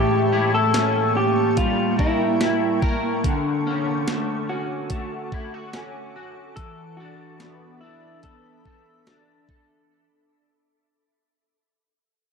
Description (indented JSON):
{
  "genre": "dream pop",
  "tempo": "72 BPM",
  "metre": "4/4",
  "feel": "straight",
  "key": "unclear",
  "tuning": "A4 = 440 Hz",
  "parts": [
    { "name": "electric guitar through a small old amp", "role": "melody", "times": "0.0-9.4 s", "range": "E4 to A4", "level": "-23 LUFS", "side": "equal", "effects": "spring reverb, tape echo" },
    { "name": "shimmering ambient pad", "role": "sustained chords", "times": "0.0-9.9 s", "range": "Bb3 to D6", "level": "-28 LUFS", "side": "right 2 dB", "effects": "chorus, built-in reverb" },
    { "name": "electric guitar at the edge of break-up", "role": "arpeggios", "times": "0.0-10.5 s", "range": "A2 to Bb4", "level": "-25 LUFS", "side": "left 1 dB", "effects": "analog chorus, tape echo" },
    { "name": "crisp 8-bit digital drum machine", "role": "drums", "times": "0.7-9.7 s", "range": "hi-hat, kick drum, snare drum", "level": "-26 LUFS", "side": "equal", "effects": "none" }
  ],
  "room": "moderate concert hall reverb, RT60 2.2 s",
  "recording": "dark, warm production",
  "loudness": "-19 LUFS",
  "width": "side -5 dB against mid",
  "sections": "0.0-9.9 A section",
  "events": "fade-out 0.0-9.9",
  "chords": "0.0 A7b9; 3.2 Dmaj7; 6.6 E7sus4"
}